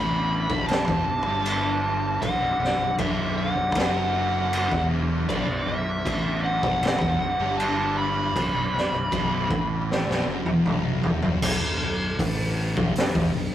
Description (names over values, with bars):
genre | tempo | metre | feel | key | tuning
stoner and doom metal | 78 BPM | 4/4 | straight | B minor | A4 = 438 Hz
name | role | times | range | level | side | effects
fuzz lead guitar | melody | 0.0-10.6 s | D5 to B5 | -26 LUFS | equal | distortion
swarming drone | sustained chords | 0.1-13.5 s | F#3 to D4 | -37 LUFS | left 2 dB | none
thick fuzz guitar | riff | 0.0-13.5 s | B1 to A2 | -30 LUFS | left 4 dB | distortion
thick fuzz guitar | riff | 0.0-13.5 s | B1 to A2 | -32 LUFS | right 4 dB | distortion
growling fingered electric bass | bass | 0.0-13.5 s | B0 to A1 | -31 LUFS | equal | overdrive, tube saturation
raw garage drum kit | drums | 0.5-13.3 s | crash cymbal, hi-hat, kick drum, snare drum, toms | -26 LUFS | equal | none
room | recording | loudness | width
light reverb | rough rehearsal-room recording, tube saturation | -22 LUFS | side -11 dB against mid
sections
0.0-11.4 A section; 11.4-13.5 B section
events
drum fill 9.9-11.4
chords
0.0 Bm